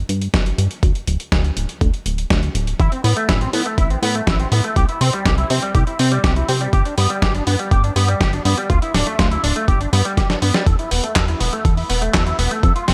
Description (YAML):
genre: italo disco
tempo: 122 BPM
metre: 4/4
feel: straight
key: unclear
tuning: A4 = 439 Hz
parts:
  - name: chorused synth bass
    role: bass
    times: 0.0-12.9 s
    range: D1 to C3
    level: -22 LUFS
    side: equal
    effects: none
  - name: dusty soul sampler-style drum kit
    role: drums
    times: 0.1-12.9 s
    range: handclaps, hi-hat, snare drum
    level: -24 LUFS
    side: equal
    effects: small room ambience
  - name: electronic kick drum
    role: drums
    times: 0.3-12.7 s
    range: none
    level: -20 LUFS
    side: equal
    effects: small room ambience
  - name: electric guitar with an envelope filter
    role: arpeggios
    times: 2.8-12.9 s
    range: G3 to A4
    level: -24 LUFS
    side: equal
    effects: ensemble chorus, low-pass filter, digital delay
room: light reverb, digital ambience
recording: none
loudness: -18 LUFS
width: mono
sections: 0.0-10.7 A section; 10.7-12.9 B section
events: drum fill 10.2-10.7; filter sweep on clean electric guitar 10.7-12.9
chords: 0.0 N.C.; 2.8 Amadd9; 4.8 C; 6.7 G; 8.7 Dmadd9; 9.7 G; 10.7 Esus4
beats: 0.34 | 0.83 1.32 1.81 2.31 | 2.80 3.29 3.78 4.27 | 4.76 5.26 5.75 6.24 | 6.73 7.22 7.71 8.21 | 8.70 9.19 9.68 10.17 | 10.67 11.16 11.65 12.14 | 12.63